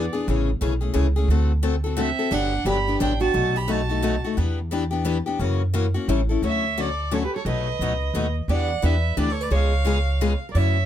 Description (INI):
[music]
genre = acoustic string swing (jazz manouche)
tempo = 176 BPM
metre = 3/4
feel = swing 61% on 8ths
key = D major from 6.4 s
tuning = A4 = 440 Hz
[part]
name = warm violin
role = melody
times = 0.0-4.3, 6.5-10.9 s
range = B4 to B5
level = -28 LUFS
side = right 3 dB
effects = none
[part]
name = picked steel-string acoustic guitar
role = second line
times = 0.0-4.2, 6.4-10.9 s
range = B3 to D5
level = -29 LUFS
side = right 4 dB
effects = none
[part]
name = picked steel-string acoustic guitar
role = accompaniment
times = 0.0-10.8 s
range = B2 to A4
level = -25 LUFS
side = left 5 dB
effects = none
[part]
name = upright bass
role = bass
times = 0.0-10.9 s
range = G1 to F#2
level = -23 LUFS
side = right 1 dB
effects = none
[sound]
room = little or no reverb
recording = close, detailed microphones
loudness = -20 LUFS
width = side -11 dB against mid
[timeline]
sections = 0.0-6.4 A section; 6.4-10.9 B section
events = none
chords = 0.3 Amaj7; 1.3 D7; 2.3 Gmaj7; 3.4 B7; 4.4 Em7; 5.4 F#7; 6.1 A7; 6.4 Dmaj7; 7.5 B7; 8.5 Em7; 9.5 C#7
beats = | 0.28 0.62 0.96 | 1.30 1.64 1.99 | 2.33 2.67 3.01 | 3.35 3.69 4.04 | 4.38 4.72 5.06 | 5.40 5.74 6.09 | 6.43 6.77 7.11 | 7.46 7.80 8.14 | 8.49 8.83 9.17 | 9.52 9.86 10.21 | 10.55